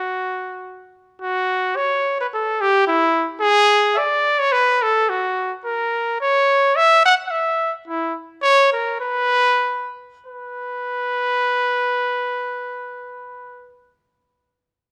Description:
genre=mexican folk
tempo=87-110 BPM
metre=2/4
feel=swing 53% on 8ths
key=B minor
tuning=A4 = 440 Hz
part: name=warm trumpet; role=solo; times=0.0-13.8 s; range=E4 to F#5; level=-19 LUFS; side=equal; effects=none
room=moderate recital hall reverb, RT60 1.5 s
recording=none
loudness=-19 LUFS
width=mono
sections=0.0-1.2 A section; 1.2-10.3 B section; 10.3-13.0 C section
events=slowing down 7.9-10.3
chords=none

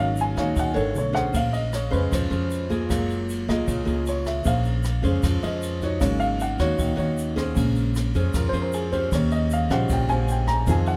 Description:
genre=bossa nova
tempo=154 BPM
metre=4/4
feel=straight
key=Bb minor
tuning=A4 = 441 Hz
part: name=nylon-string guitar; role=accompaniment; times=0.0-11.0 s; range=Bb2 to Db5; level=-30 LUFS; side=equal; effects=none
part: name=warm baby grand piano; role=accompaniment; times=0.0-11.0 s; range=Db3 to Bb5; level=-30 LUFS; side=equal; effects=none
part: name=upright bass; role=bass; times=0.0-11.0 s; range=Gb1 to F2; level=-27 LUFS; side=equal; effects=none
part: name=jazz brush drum kit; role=drums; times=0.2-11.0 s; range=kick drum, ride cymbal, rim click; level=-33 LUFS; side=equal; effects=none
part: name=egg shaker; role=percussion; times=0.2-11.0 s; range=none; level=-47 LUFS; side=equal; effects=none
room=little or no reverb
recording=close, detailed microphones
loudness=-24 LUFS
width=mono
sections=0.0-11.0 A section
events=grand piano solo 0.0-11.0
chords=0.0 Ab7sus4; 1.0 Bm9; 1.3 Bbm9; 2.9 Gbmaj9; 4.5 Bbm9; 6.0 Ab7sus4; 7.6 Bbm9; 9.1 Eb13

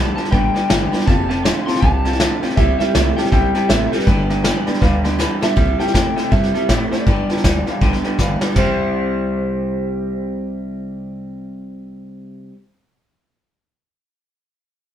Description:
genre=rockabilly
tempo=160 BPM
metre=4/4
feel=swing 61% on 8ths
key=C major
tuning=A4 = 442 Hz
part: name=electric guitar through a small old amp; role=melody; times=0.0-12.5 s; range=B4 to C6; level=-24 LUFS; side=left 1 dB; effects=none
part: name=picked steel-string acoustic guitar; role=accompaniment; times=0.0-12.6 s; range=G2 to A4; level=-29 LUFS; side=left 5 dB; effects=none
part: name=warm upright piano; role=accompaniment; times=0.0-12.5 s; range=B4 to B5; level=-30 LUFS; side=left 4 dB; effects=none
part: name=electric guitar through a small old amp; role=riff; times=0.0-12.6 s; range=F2 to E4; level=-21 LUFS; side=right 2 dB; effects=none
part: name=upright bass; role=bass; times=0.0-12.5 s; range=F1 to A2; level=-23 LUFS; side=equal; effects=none
part: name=vintage brush drum kit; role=drums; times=0.2-8.7 s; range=hi-hat, kick drum, snare drum, splash cymbal, toms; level=-18 LUFS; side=equal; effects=none
room=moderate studio reverb, RT60 0.8 s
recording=band playing live in one room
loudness=-15 LUFS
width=side -10 dB against mid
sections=0.0-5.6 A section; 5.6-8.6 B section; 8.6-11.5 C section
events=upright piano fill 5.0-5.6; drum fill 5.2-5.6, 8.2-8.6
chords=0.0 G; 1.1 F; 2.6 C; 4.1 G; 5.6 C; 7.1 G; 8.6 C

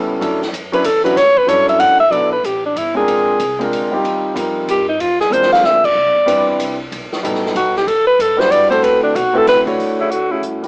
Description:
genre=jazz, small-group swing and bop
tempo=188 BPM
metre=3/4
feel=swing 64% on 8ths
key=unclear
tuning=A4 = 442 Hz
part: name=warm concert grand piano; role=accompaniment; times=0.0-10.7 s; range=F#3 to C#5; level=-21 LUFS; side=equal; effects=cassette tape, plate reverb
part: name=upright bass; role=bass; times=0.0-10.7 s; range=G1 to A2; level=-36 LUFS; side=equal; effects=none
part: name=swinging big-band drum kit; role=drums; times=0.2-10.7 s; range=crash cymbal, hi-hat, kick drum, ride cymbal, snare drum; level=-29 LUFS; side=equal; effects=cassette tape
part: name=breathy alto saxophone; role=melody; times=0.7-10.4 s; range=D4 to F#5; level=-15 LUFS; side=equal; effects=cassette tape
part: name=bright tenor saxophone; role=second line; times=10.0-10.4 s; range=C#3 to D3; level=-27 LUFS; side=equal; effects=cassette tape
room=moderate studio reverb, RT60 0.6 s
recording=home recording on cassette, small speaker sound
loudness=-15 LUFS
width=mono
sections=0.0-2.1 A section; 2.1-9.8 A section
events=alto saxophone solo 0.0-9.8; drum fill 5.3-5.6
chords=0.2 Dmaj9; 2.1 Gmaj13; 3.1 Bb9; 4.0 Eb69; 5.0 Bb9; 6.0 Cmaj7; 6.9 B7b13; 7.9 Em9; 8.8 D13; 9.8 Dmaj9

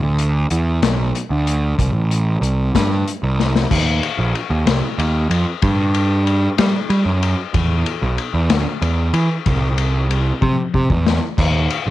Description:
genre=psychedelic rock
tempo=62 BPM (dotted quarters)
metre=6/8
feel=straight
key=unclear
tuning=A4 = 440 Hz
part: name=fuzz picked electric bass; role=bass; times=0.0-11.9 s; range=A1 to G3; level=-17 LUFS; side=right 1 dB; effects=overdrive
part: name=vintage drum kit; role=drums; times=0.2-11.9 s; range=crash cymbal, hi-hat, kick drum, ride cymbal, snare drum, toms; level=-20 LUFS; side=left 4 dB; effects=none
room=little or no reverb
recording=1960s-style stereo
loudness=-15 LUFS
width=side -15 dB against mid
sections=0.0-3.7 A section; 3.7-11.9 B section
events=drum fill 3.4-3.7, 10.4-11.4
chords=none

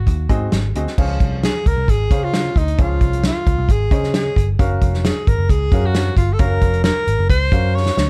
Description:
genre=uptempo 1960s-style soul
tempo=133 BPM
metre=4/4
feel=straight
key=Db major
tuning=A4 = 440 Hz
part: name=clear tenor saxophone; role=melody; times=0.0-8.1 s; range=Eb4 to Db5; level=-24 LUFS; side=equal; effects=none
part: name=vintage muted picked electric bass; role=bass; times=0.0-8.1 s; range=F1 to Db3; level=-21 LUFS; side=equal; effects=none
part: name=natural country drum kit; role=drums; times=0.1-8.1 s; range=crash cymbal, hi-hat, kick drum, snare drum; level=-20 LUFS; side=equal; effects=none
part: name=clear grand piano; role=accompaniment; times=0.3-7.9 s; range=F3 to F5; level=-28 LUFS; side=equal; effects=none
room=little or no reverb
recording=dark, warm production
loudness=-17 LUFS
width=mono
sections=1.0-8.1 A section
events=drum fill 7.7-8.1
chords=0.0 Ab7; 1.0 Dbmaj7; 4.6 Gbmaj7

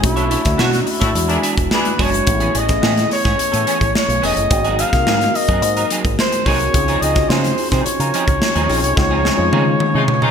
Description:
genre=polished 1980s jazz-funk pop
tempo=108 BPM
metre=4/4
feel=straight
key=unclear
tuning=A4 = 440 Hz
part: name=warm flugelhorn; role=melody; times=0.0-10.3 s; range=Eb4 to F5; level=-19 LUFS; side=equal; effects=none
part: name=tine electric piano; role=accompaniment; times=0.0-10.3 s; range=G#3 to Bb4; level=-22 LUFS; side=left 2 dB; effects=ensemble chorus
part: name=semi-hollow electric guitar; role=riff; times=0.0-10.3 s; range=E3 to Db5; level=-24 LUFS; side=right 5 dB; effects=ensemble chorus
part: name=fingered electric bass with an envelope filter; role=bass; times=0.0-10.3 s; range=E1 to Db3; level=-21 LUFS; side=equal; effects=none
part: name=modern studio drum kit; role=drums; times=0.0-10.3 s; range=hi-hat, kick drum, snare drum, toms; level=-19 LUFS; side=equal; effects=gated reverb
part: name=warm horn section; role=second line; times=1.0-1.9, 9.9-10.3 s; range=G#3 to A4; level=-23 LUFS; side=left 2 dB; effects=none
room=moderate lush hall reverb, RT60 2.2 s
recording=bright 1980s-style digital production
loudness=-14 LUFS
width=side -7 dB against mid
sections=0.0-10.3 A section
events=band accent 0.0-2.3, 9.0-10.3; drum fill 9.0-10.3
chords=0.0 Cbm11; 1.2 E7; 2.3 Amaj9; 4.5 Ab7; 6.7 Dbmaj9

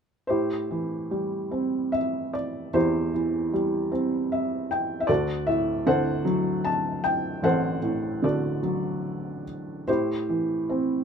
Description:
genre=classical, lyrical solo piano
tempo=75 BPM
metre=3/4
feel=uneven beats, rubato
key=A dorian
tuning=A4 = 440 Hz
part: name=felt-muted upright piano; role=solo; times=0.3-11.0 s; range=A1 to A5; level=-24 LUFS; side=equal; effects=none
room=light reverb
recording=minimal, uncompressed stereo recording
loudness=-24 LUFS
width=side -6 dB against mid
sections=0.3-11.0 A section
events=felt piano fill 3.9-5.1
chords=0.3 Am7; 5.1 D7; 9.9 Am7

